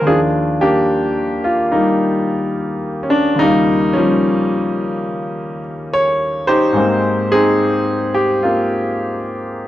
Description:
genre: solo jazz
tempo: 72 BPM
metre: 4/4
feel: swing 66% on 8ths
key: Eb major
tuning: A4 = 438 Hz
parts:
  - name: clear grand piano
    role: solo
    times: 0.0-9.7 s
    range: Eb2 to Db5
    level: -14 LUFS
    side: equal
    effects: none
room: little or no reverb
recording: dry, close 1970s-style studio recording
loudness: -14 LUFS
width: side -14 dB against mid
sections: 0.1-9.7 A section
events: none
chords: 0.1 Ebmaj9; 3.4 Eb9; 6.8 Abmaj9

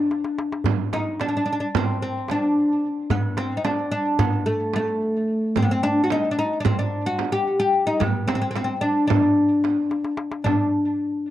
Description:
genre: Turkish makam ensemble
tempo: 220 BPM (eighths)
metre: 9/8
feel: straight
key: D makam hicaz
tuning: A4 = 440 Hz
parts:
  - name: oud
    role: melody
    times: 0.0-10.7 s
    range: A3 to G4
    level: -21 LUFS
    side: left 1 dB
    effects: tape echo
  - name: darbuka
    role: percussion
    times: 0.1-10.7 s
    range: none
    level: -27 LUFS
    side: equal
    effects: none
  - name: frame drum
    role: percussion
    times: 0.7-10.7 s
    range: none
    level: -28 LUFS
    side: right 10 dB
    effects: none
room: light reverb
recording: dry, close 1970s-style studio recording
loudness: -20 LUFS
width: side -13 dB against mid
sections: 0.0-10.5 A section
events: drum fill 0.1-0.7, 9.9-10.5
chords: none

